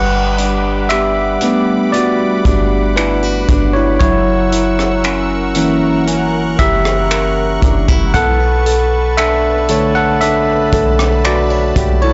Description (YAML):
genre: contemporary R&B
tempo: 58 BPM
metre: 4/4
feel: straight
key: B minor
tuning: A4 = 439 Hz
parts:
  - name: barky tine electric piano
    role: accompaniment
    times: 0.0-12.1 s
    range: D3 to F#5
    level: -17 LUFS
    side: equal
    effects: none
  - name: lush unison pad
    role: sustained chords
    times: 0.0-12.1 s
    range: G3 to F#6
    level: -25 LUFS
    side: equal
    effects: chorus, sidechain pumping
  - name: fingerpicked plugged-in steel-string acoustic guitar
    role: arpeggios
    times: 0.0-12.1 s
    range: F#3 to C#5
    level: -23 LUFS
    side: equal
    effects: digital delay
  - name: clean 808-style bass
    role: bass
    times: 0.0-12.1 s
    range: F#1 to B1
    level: -21 LUFS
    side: equal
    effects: none
  - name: crisp fusion drum kit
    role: drums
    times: 0.4-12.0 s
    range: finger snaps, hi-hat, kick drum, rim click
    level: -20 LUFS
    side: equal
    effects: vintage 12-bit sampler grit, soft clipping on snare
room: small room ambience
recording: blown-out, overdriven recording, overdrive, nothing above 7.7 kHz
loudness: -14 LUFS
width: mono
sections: 0.0-12.1 A section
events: tine electric piano solo 0.0-12.1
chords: 0.0 Gmaj7; 4.0 F#7; 8.1 Bm9